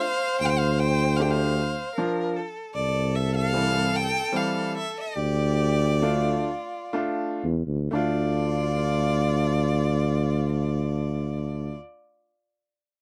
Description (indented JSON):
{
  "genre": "klezmer",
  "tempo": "58-77 BPM",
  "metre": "3/4",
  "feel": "straight",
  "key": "D minor",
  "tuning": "A4 = 441 Hz",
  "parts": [
    { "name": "clear violin", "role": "melody", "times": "0.0-11.8 s", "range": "D5 to G5", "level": "-31 LUFS", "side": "equal", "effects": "none" },
    { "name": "rich violin", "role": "second line", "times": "0.0-11.7 s", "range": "F4 to C5", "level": "-34 LUFS", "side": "equal", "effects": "none" },
    { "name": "bright upright piano", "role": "accompaniment", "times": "0.0-11.8 s", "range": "E3 to G4", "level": "-32 LUFS", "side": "equal", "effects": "none" },
    { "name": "mellow tuba", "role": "bass", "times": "0.4-11.8 s", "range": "C2 to E2", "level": "-27 LUFS", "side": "equal", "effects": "none" }
  ],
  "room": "little or no reverb",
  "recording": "dry, close 1970s-style studio recording",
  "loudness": "-25 LUFS",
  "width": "mono",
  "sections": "0.0-7.9 A section; 7.9-11.0 B section",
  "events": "slowing down 2.7-7.9",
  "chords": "0.0 Dm; 2.7 C; 5.2 Dm",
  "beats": "| 0.42 1.20 1.97 | 2.75 3.53 4.33 | 5.15 6.02 6.93 | 7.92 8.95 9.97"
}